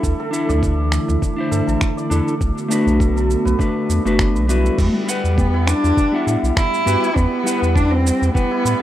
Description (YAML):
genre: organic downtempo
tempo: 101 BPM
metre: 4/4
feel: swing 55% on 16ths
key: E minor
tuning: A4 = 445 Hz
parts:
  - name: mellow electric guitar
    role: accompaniment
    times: 0.0-8.8 s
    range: G3 to F#5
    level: -22 LUFS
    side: left 2 dB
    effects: sidechain pumping, ping-pong delay
  - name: airy breathy pad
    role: sustained chords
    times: 0.0-4.8 s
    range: D3 to F#4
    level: -24 LUFS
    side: right 2 dB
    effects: chorus, sidechain pumping
  - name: santur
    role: arpeggios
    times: 0.0-8.8 s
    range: D4 to D5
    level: -29 LUFS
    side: equal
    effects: ping-pong delay, plate reverb
  - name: warm sub bass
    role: bass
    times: 0.0-8.7 s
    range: F#1 to A2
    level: -19 LUFS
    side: equal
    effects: none
  - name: dusty soul sampler-style drum kit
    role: drums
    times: 0.0-8.8 s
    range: crash cymbal, finger snaps, shaker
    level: -26 LUFS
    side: right 2 dB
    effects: overdrive
  - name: electronic kick drum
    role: drums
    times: 0.0-8.5 s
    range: none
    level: -19 LUFS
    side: equal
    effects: overdrive
  - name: wind-like tuned noise texture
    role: texture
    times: 0.0-8.8 s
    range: G3 to A4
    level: -35 LUFS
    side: right 2 dB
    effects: none
  - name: frame drum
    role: percussion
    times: 0.5-3.6 s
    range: none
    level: -30 LUFS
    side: left 1 dB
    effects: none
  - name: dark cello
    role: melody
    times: 4.8-8.8 s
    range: G3 to E4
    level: -19 LUFS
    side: right 1 dB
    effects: ping-pong delay
room: moderate studio reverb, RT60 0.5 s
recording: rough home demo mix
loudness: -15 LUFS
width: side -12 dB against mid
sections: 0.0-4.8 A section; 4.8-8.8 B section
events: none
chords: 0.0 Dsus2; 2.4 Bm7; 4.8 Emadd9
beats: | 0.03 0.63 1.22 1.81 | 2.41 3.00 3.60 4.19 | 4.79 5.38 5.97 6.57 | 7.16 7.75 8.35